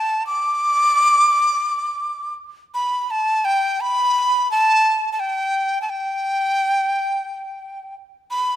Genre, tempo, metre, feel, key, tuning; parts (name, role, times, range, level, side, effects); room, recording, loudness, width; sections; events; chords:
chinese traditional; free time; A4 = 439 Hz
breathy dizi; solo; 0.0-8.6 s; G5 to D6; -17 LUFS; equal
moderate concert hall reverb, RT60 1.8 s; -17 LUFS; side -12 dB against mid
0.0-3.1 A section; 3.1-8.6 B section